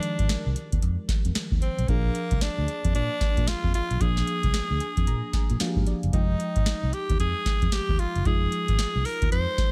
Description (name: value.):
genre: R&B, new jack swing.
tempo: 113 BPM.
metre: 4/4.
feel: swing 62% on 16ths.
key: F dorian.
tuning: A4 = 440 Hz.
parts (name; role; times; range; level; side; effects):
raspy tenor saxophone; melody; 0.0-9.7 s; Bb3 to C5; -32 LUFS; equal; none.
mellow FM electric piano; accompaniment; 0.0-9.7 s; Eb3 to Bb5; -35 LUFS; equal; chorus.
booming analog drum machine; drums; 0.0-9.7 s; hi-hat, kick drum, snare drum; -28 LUFS; equal; gated reverb.
vintage muted fingered electric bass; bass; 0.2-9.6 s; F1 to Bb2; -30 LUFS; equal; none.
room: little or no reverb.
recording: none.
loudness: -25 LUFS.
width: mono.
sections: 0.0-9.7 A section.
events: FM electric piano fill 4.5-6.1.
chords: 0.0 Fm9; 1.9 Bb7; 6.1 Fm9.